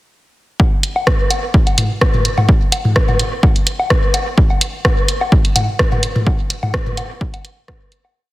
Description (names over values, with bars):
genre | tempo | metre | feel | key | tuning
techno | 127 BPM | 4/4 | swing 54% on 16ths | none | none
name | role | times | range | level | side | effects
electronic kick drum | drums | 0.6-7.8 s | none | -14 LUFS | equal | none
electronic woodblock and toms | percussion | 0.6-8.1 s | none | -19 LUFS | left 1 dB | sidechain pumping on perc, sidechain pumping on toms, dub echo
punchy analog drum machine | drums | 0.8-8.0 s | hi-hat, rim click | -18 LUFS | equal | dub echo
room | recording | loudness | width
light reverb | heavily compressed radio sound | -13 LUFS | side -18 dB against mid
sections
0.6-8.2 groove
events
fade-out 5.6-8.2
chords
none